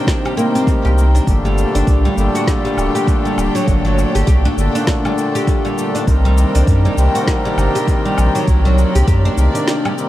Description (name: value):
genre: organic downtempo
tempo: 100 BPM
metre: 4/4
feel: swing 60% on 16ths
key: G harmonic minor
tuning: A4 = 440 Hz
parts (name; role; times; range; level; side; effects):
- hand-pumped harmonium; accompaniment; 0.0-10.1 s; Bb2 to D4; -20 LUFS; left 2 dB; sidechain pumping, analog delay
- rich symphonic string section; sustained chords; 0.0-10.1 s; Eb3 to G5; -26 LUFS; left 1 dB; sidechain pumping
- oud; arpeggios; 0.0-9.9 s; F#3 to G4; -20 LUFS; right 1 dB; tape echo
- deep house drum kit; drums; 0.1-10.1 s; cabasa, hi-hat, snare drum, woodblock; -27 LUFS; equal; small room ambience, analog delay
- electronic kick drum; drums; 0.1-9.2 s; none; -16 LUFS; equal; small room ambience
- warm sub bass; bass; 0.8-9.5 s; D1 to F#2; -14 LUFS; equal; sidechain pumping
room: light reverb, small room reverb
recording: echo-heavy mix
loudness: -13 LUFS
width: side -14 dB against mid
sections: 0.0-10.1 A section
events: break 9.7-10.1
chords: 0.0 Cm7; 1.3 Gmadd9; 6.1 Cm7